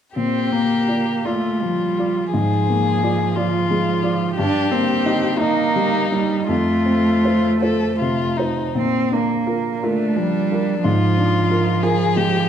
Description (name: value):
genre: classical, slow romantic movement for piano trio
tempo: 52-61 BPM (dotted quarters)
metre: 6/8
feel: rubato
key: Bb major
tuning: A4 = 440 Hz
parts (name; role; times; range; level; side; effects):
- warm violin; melody; 0.2-12.5 s; D4 to A4; -23 LUFS; left 6 dB; none
- warm cello; second line; 0.2-12.5 s; F3 to D4; -21 LUFS; right 4 dB; none
- warm baby grand piano; accompaniment; 0.2-12.5 s; F2 to Eb5; -21 LUFS; left 1 dB; none
room: wet recital hall reverb, RT60 1.4 s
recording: dark, warm production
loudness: -17 LUFS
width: side -9 dB against mid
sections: 0.2-12.5 A section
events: none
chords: 0.2 Bb; 2.3 Bb7/Ab; 4.4 Eb/G; 6.5 F; 8.8 Bb; 10.8 Bb7/Ab